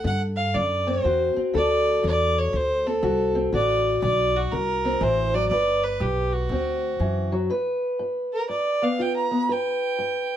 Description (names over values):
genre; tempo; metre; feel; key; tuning
acoustic country blues, solo or duo; 121 BPM; 4/4; swing 64% on 8ths; G major; A4 = 441 Hz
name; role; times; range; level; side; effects
warm fiddle; melody; 0.0-10.4 s; F#4 to Bb5; -24 LUFS; right 2 dB; none
fingerpicked steel-string acoustic guitar; accompaniment; 0.0-10.4 s; G2 to B4; -25 LUFS; left 2 dB; none
upright bass; bass; 0.0-7.5 s; G1 to G2; -27 LUFS; equal; none
room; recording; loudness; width
moderate studio reverb, RT60 0.6 s; none; -21 LUFS; side -10 dB against mid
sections
0.0-7.5 A section; 7.5-10.4 B section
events
fiddle solo 7.5-10.4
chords
0.0 D7; 5.5 G; 6.5 D7; 7.5 G7